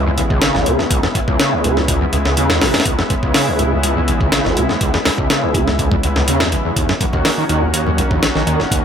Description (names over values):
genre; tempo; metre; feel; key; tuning
breakbeat, breaks; 123 BPM; 4/4; straight; C# minor; A4 = 441 Hz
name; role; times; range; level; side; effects
lush unison pad; sustained chords; 0.0-8.8 s; C#3 to F#4; -21 LUFS; equal; chorus, vintage 12-bit sampler grit, sidechain pumping
screaming distorted acid line; riff; 0.0-8.8 s; D#1 to D#3; -18 LUFS; equal; distortion, ensemble chorus, ping-pong delay
saturated sub bass; bass; 0.0-8.6 s; G#1 to E2; -20 LUFS; equal; none
breakbeat sampler-style drum kit; drums; 0.2-8.8 s; hi-hat, kick drum, snare drum; -18 LUFS; equal; none
congas; percussion; 7.0-8.1 s; none; -28 LUFS; left 3 dB; none
room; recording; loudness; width
light reverb; none; -13 LUFS; side -8 dB against mid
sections
0.0-8.8 A section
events
none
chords
0.0 C#m7; 6.8 D#m7